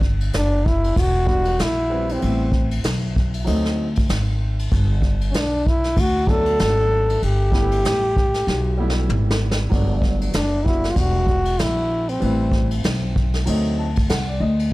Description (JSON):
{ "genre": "hip hop, jazz-hop", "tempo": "96 BPM", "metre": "4/4", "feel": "swing 57% on 16ths", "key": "G major", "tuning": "A4 = 440 Hz", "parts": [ { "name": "upright bass", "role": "bass", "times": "0.0-14.7 s", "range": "E1 to D2", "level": "-21 LUFS", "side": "equal", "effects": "tube saturation" }, { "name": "vintage brush drum kit", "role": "drums", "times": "0.0-14.7 s", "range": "hi-hat, kick drum, ride cymbal, snare drum, toms", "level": "-23 LUFS", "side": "equal", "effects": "none" }, { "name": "clear trombone", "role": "melody", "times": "0.4-12.7 s", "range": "C4 to A4", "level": "-22 LUFS", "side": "equal", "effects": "tape echo" }, { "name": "warm upright piano", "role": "accompaniment", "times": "1.3-14.7 s", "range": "F#3 to A5", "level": "-28 LUFS", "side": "right 1 dB", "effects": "none" } ], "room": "small room ambience", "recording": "dry, gritty hardware recording, transformer saturation, vinyl crackle", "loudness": "-17 LUFS", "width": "side -19 dB against mid", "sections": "0.0-9.7 A section; 9.7-14.7 A section", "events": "drum fill 8.5-9.7; upright piano fill 13.5-14.7", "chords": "0.0 Gmaj7(no3); 1.0 Em9; 2.2 Am9; 3.5 D7b9; 4.7 Gmaj9; 11.0 Em9; 12.2 Am9; 13.5 D7b9" }